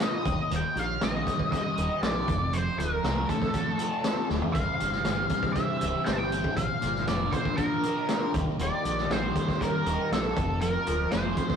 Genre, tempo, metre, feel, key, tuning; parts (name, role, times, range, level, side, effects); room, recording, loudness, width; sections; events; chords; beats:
psychedelic rock; 119 BPM; 4/4; straight; A4 = 440 Hz
octave-fuzz lead guitar; melody; 0.0-11.6 s; A4 to A5; -30 LUFS; equal; wah, distortion
fuzz guitar; riff; 0.0-11.6 s; C2 to Bb4; -31 LUFS; left 1 dB; distortion, phaser
vintage drum kit; drums; 0.0-11.6 s; hi-hat, kick drum, snare drum, toms; -30 LUFS; equal
fingered electric bass; bass; 0.3-11.3 s; C1 to C2; -33 LUFS; equal
soft string machine; sustained chords; 4.6-11.6 s; D3 to A5; -37 LUFS; right 2 dB; ensemble chorus
moderate stone room reverb, RT60 1.0 s; rough rehearsal-room recording; -25 LUFS; side -7 dB against mid
0.0-11.6 A section
drum fill 4.3
0.3 Eb; 2.3 F; 4.6 C; 6.6 Bb; 8.3 Eb; 10.4 F
0.01 | 0.52 1.02 1.53 2.03 | 2.54 3.04 3.55 4.05 | 4.56 5.06 5.57 6.07 | 6.58 7.08 7.59 8.09 | 8.60 9.10 9.61 10.11 | 10.62 11.12